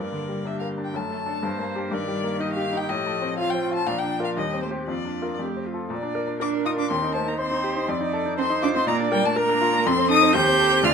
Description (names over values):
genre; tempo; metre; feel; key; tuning
quick classical-period movement for piano quartet; 122 BPM; 2/4; straight; Bb major; A4 = 441 Hz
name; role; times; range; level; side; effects
rich violin; melody; 0.0-10.9 s; C5 to G6; -25 LUFS; left 4 dB; none
rich cello; second line; 0.0-10.9 s; Eb3 to G4; -28 LUFS; right 8 dB; none
bright baby grand piano; accompaniment; 0.0-10.9 s; D2 to C5; -26 LUFS; left 2 dB; none
rich viola; accompaniment; 0.0-10.9 s; D4 to D5; -30 LUFS; right 4 dB; none
room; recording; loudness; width
light reverb; none; -21 LUFS; side -6 dB against mid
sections
0.0-5.9 A section; 5.9-10.9 B section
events
none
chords
0.0 Gm; 0.9 D/F#; 1.4 Gm; 1.9 Eb/G; 2.9 F7/A; 3.9 Bb; 4.4 Cm/Eb; 4.9 Bb/F; 5.4 F; 5.9 Bb; 6.9 Cm/Eb; 7.9 F7; 8.9 Bb; 9.9 F; 10.4 Eb6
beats
0.46 | 0.95 1.44 | 1.92 2.41 | 2.89 3.38 | 3.88 4.37 | 4.89 5.40 | 5.91 6.41 | 6.90 7.40 | 7.89 8.38 | 8.88 9.37 | 9.86 10.35 | 10.84